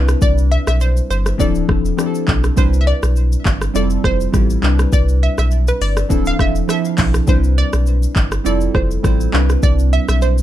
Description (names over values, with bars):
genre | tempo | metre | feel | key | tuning
afrobeats | 102 BPM | 4/4 | swing 55% on 16ths | C major | A4 = 436 Hz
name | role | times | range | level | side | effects
warm analog keys | accompaniment | 0.0-10.4 s | F3 to C5 | -21 LUFS | right 1 dB | chorus, phaser
saturated sub bass | bass | 0.0-10.4 s | D1 to C2 | -16 LUFS | equal | none
afro-pop drum kit | drums | 0.1-10.4 s | handclaps, hi-hat, kick drum, rim click, shaker | -18 LUFS | equal | none
analog pluck | melody | 0.2-10.4 s | B4 to F5 | -23 LUFS | right 1 dB | chorus, tape echo
room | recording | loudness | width
little or no reverb | dark, warm production | -13 LUFS | side -12 dB against mid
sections
0.0-10.4 A section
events
none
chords
0.0 Cmaj9; 1.4 Dm9; 2.6 Cmaj9; 3.7 Fmaj9; 4.6 Cmaj9; 6.1 Dm9; 7.3 Cmaj9; 8.5 Fmaj9; 9.3 Cmaj9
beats
| 0.22 0.81 1.40 1.98 | 2.57 3.16 3.75 4.34 | 4.92 5.51 6.10 6.69 | 7.28 7.87 8.45 9.04 | 9.63 10.22